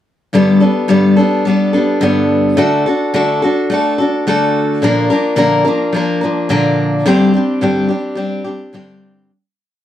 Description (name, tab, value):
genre	rock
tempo	107 BPM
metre	4/4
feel	straight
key	unclear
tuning	A4 = 438 Hz
part	picked steel-string acoustic guitar	solo	0.3-9.3 s	G2 to Bb4	-11 LUFS	left 1 dB	none
room	wet booth ambience, RT60 0.2 s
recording	dry, close 1970s-style studio recording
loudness	-11 LUFS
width	side -11 dB against mid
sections	0.3-9.3 verse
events	fade-out 7.1-9.3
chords	0.3 Gadd9; 2.6 D; 4.8 Bb; 7.1 Gsus4